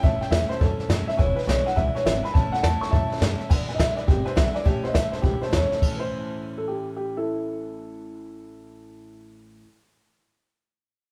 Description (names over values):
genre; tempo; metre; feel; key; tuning
rockabilly; 207 BPM; 4/4; swing 64% on 8ths; A major; A4 = 439 Hz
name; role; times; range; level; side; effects
dark upright piano; melody; 0.0-9.6 s; E4 to C#6; -30 LUFS; equal; none
picked steel-string acoustic guitar; accompaniment; 0.0-9.7 s; E2 to E4; -38 LUFS; equal; none
tack piano; accompaniment; 0.0-9.6 s; A4 to B5; -40 LUFS; equal; none
upright bass; bass; 0.0-9.6 s; E1 to F#2; -30 LUFS; equal; none
jazz brush drum kit; drums; 0.0-5.9 s; crash cymbal, hi-hat, kick drum, snare drum; -26 LUFS; equal; none
room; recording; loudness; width
moderate large studio reverb, RT60 1.4 s; band playing live in one room; -24 LUFS; mono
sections
0.0-3.5 A section; 3.5-5.8 B section; 5.8-8.1 C section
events
none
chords
0.0 A; 1.2 E7; 2.3 A; 3.5 E7; 4.7 A